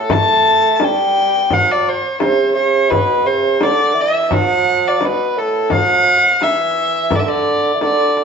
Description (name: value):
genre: Arabic maqam ensemble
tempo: 86 BPM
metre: 4/4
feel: straight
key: D maqam rast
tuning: A4 = 440 Hz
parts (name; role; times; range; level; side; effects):
- dark violin; melody; 0.0-8.2 s; A4 to A5; -14 LUFS; left 1 dB; none
- warm bassoon; second line; 0.0-8.2 s; A2 to A3; -18 LUFS; right 4 dB; none
- darbuka; percussion; 0.1-8.2 s; none; -25 LUFS; left 2 dB; none
- frame drum; percussion; 0.1-8.0 s; none; -22 LUFS; left 4 dB; none
room: wet stone room reverb, RT60 1.2 s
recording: band playing live in one room, nothing above 7.7 kHz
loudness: -12 LUFS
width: side -6 dB against mid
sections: 0.0-8.2 A section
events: drum fill 7.8-8.2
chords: none